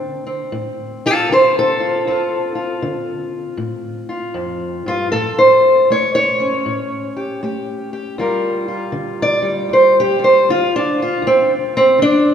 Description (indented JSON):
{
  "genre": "acoustic country blues, solo or duo",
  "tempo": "79 BPM",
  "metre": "4/4",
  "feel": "swing 65% on 8ths",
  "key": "D minor",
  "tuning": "A4 = 441 Hz",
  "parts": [
    { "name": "fingerpicked steel-string acoustic guitar", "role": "solo", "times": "0.0-12.3 s", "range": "D2 to D5", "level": "-14 LUFS", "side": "equal", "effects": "none" }
  ],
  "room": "wet church reverb, RT60 3.2 s",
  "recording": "recorded in a church or concert hall",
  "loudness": "-14 LUFS",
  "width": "side -8 dB against mid",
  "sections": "0.0-12.3 A section",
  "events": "steel-string acoustic guitar solo 0.0-12.3",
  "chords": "0.0 Dm7; 5.1 A7; 8.2 Gm7; 11.2 D5"
}